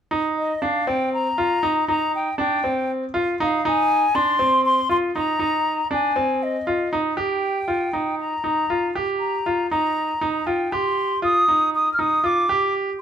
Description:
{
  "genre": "progressive instrumental, progressive",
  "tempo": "238 BPM (eighths)",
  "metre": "7/8",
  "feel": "straight",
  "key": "unclear",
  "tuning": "A4 = 439 Hz",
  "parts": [
    { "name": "bright grand piano", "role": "arpeggios", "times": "0.1-12.9 s", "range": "C4 to G4", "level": "-22 LUFS", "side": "right 1 dB", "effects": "none" },
    { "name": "hollow concert flute", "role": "melody", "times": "0.4-12.7 s", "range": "Eb5 to F6", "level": "-21 LUFS", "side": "left 1 dB", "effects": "none" }
  ],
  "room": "moderate stone room reverb, RT60 1.2 s",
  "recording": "band playing live in one room",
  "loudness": "-19 LUFS",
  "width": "side -8 dB against mid",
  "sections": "0.1-7.2 A section; 7.2-13.0 B section",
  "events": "none",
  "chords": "0.1 F7(no3); 7.2 Eb"
}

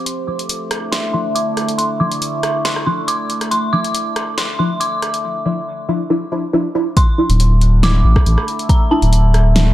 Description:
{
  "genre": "deep dubstep",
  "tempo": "139 BPM",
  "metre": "4/4",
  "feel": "half-time",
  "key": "D minor",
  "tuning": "A4 = 441 Hz",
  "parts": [
    { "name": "dark detuned synth bell", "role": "melody", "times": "0.0-9.3 s", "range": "A5 to D6", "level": "-22 LUFS", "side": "right 1 dB", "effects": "chorus, low-pass filter, dub echo" },
    { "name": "overtone-sweeping drone", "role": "sustained chords", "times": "0.0-9.7 s", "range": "D3 to E4", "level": "-23 LUFS", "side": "equal", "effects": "chorus, built-in reverb, phaser" },
    { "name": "deep house drum kit", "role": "drums", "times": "0.1-9.6 s", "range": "hi-hat, rim click, snare drum", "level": "-21 LUFS", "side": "equal", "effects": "high-pass filter on hats, high-pass filter on snare, high-pass filter on room" },
    { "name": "filtered dub chord stab", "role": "stabs", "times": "0.3-9.0 s", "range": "F3 to E4", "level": "-19 LUFS", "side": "equal", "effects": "phaser, ensemble chorus, dub echo" },
    { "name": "electronic kick drum", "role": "drums", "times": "7.0-8.8 s", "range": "none", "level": "-13 LUFS", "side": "equal", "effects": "none" },
    { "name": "saturated sub bass", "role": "bass", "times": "7.3-9.7 s", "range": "D1 to A1", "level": "-11 LUFS", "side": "equal", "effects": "none" }
  ],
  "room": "light reverb",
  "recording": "none",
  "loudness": "-14 LUFS",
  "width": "side -14 dB against mid",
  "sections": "0.1-7.0 A section; 7.0-9.7 B section",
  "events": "build-up 0.1-7.0; filter sweep on synth stab 0.1-7.0; filter sweep on synth bell 0.1-7.0; drop 7.0-9.7",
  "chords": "0.1 Dmadd9; 7.0 Dsus2"
}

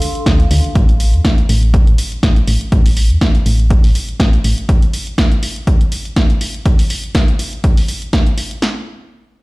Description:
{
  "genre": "piano house",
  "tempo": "122 BPM",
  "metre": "4/4",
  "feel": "swing 55% on 16ths",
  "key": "A minor",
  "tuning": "A4 = 440 Hz",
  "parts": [
    { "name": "punchy analog drum machine", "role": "drums", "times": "0.0-8.6 s", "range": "hi-hat, snare drum", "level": "-20 LUFS", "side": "equal", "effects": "none" },
    { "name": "warbly tape-like pad", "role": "texture", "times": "0.0-0.8 s", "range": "D4 to C6", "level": "-27 LUFS", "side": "equal", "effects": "chorus, built-in reverb, phaser, sidechain pumping" },
    { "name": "solid FM bass", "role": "bass", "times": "0.3-4.5 s", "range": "A1 to E2", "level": "-13 LUFS", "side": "equal", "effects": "sidechain pumping" },
    { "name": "punchy analog drum machine", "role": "drums", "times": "0.3-8.7 s", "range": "kick drum, snare drum", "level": "-13 LUFS", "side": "equal", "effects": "none" }
  ],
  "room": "little or no reverb",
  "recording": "played on a big sound system in a bare room, stone room reverb",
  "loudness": "-11 LUFS",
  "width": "side -23 dB against mid",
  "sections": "0.0-8.6 A section",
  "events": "filter sweep on FM bass 0.0-4.7",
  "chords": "0.0 Dm7; 0.8 A5; 4.7 N.C."
}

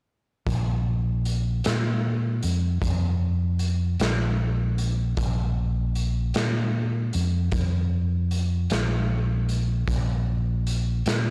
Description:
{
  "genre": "slow blues",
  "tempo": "51 BPM (dotted quarters)",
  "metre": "12/8",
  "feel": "straight",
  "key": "unclear",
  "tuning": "A4 = 440 Hz",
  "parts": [
    { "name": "fingered electric bass", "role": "bass", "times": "0.5-11.3 s", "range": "Bb1 to Bb2", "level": "-26 LUFS", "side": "equal", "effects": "tube saturation" },
    { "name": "raw garage drum kit", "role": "drums", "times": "0.5-11.2 s", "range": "hi-hat, kick drum, snare drum", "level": "-32 LUFS", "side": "equal", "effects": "none" }
  ],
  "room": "little or no reverb",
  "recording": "dry, gritty hardware recording, cassette tape",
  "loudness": "-25 LUFS",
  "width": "mono",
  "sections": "0.5-11.3 A section",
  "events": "none",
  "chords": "none"
}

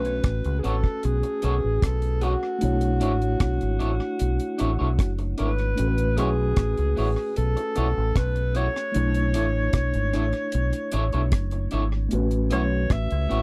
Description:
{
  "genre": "lovers rock reggae",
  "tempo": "76 BPM",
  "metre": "4/4",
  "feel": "straight",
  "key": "A major",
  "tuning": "A4 = 440 Hz",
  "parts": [
    { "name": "breathy alto saxophone", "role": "melody", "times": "0.0-13.4 s", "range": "F#4 to E5", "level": "-31 LUFS", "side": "equal", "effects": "tape echo" },
    { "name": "mellow tine electric piano", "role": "accompaniment", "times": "0.0-13.4 s", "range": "A3 to C#5", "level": "-33 LUFS", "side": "equal", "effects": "tape echo" },
    { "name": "deep dub fingered electric bass", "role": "bass", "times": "0.0-13.4 s", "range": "F#1 to C#2", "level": "-27 LUFS", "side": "equal", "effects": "none" },
    { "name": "deep reggae drum kit", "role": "drums", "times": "0.0-13.4 s", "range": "hi-hat, kick drum, rim click", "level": "-28 LUFS", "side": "equal", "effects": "tape echo" },
    { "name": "electric guitar through a small old amp", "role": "stabs", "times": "0.6-13.4 s", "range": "B3 to C#5", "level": "-32 LUFS", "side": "equal", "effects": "warbly pitch drift" }
  ],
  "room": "little or no reverb",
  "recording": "dry, close 1970s-style studio recording",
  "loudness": "-24 LUFS",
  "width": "mono",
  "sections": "0.0-13.4 A section",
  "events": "none",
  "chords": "0.0 A69; 2.6 Bm11; 5.8 A69; 8.9 Bm11; 12.1 A69"
}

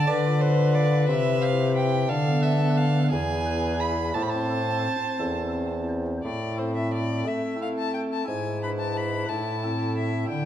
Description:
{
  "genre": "classical, baroque-style sonata movement with continuo",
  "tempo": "59 BPM (dotted quarters)",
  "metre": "6/8",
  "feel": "straight",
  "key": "A minor",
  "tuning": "A4 = 442 Hz",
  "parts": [
    { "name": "rich violin", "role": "melody", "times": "0.0-10.5 s", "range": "G#4 to B5", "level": "-30 LUFS", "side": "left 7 dB", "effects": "none" },
    { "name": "clear violin", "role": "second line", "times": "0.0-10.5 s", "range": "E4 to B5", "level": "-30 LUFS", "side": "right 6 dB", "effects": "none" },
    { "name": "pipe organ, stopped flute", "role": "accompaniment", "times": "0.0-10.5 s", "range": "E2 to F5", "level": "-26 LUFS", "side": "left 1 dB", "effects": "none" },
    { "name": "warm bassoon", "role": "bass", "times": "0.0-10.5 s", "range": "E2 to A3", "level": "-28 LUFS", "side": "right 1 dB", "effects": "none" }
  ],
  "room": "wet recital hall reverb, RT60 1.6 s",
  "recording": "dark, warm production",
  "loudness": "-23 LUFS",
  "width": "side -11 dB against mid",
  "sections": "0.0-6.2 A section; 6.2-10.5 A section",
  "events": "none",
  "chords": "0.1 Dm6; 1.1 C; 2.1 Dm69; 3.1 E; 4.2 Am; 8.3 E7/G#; 9.3 Am"
}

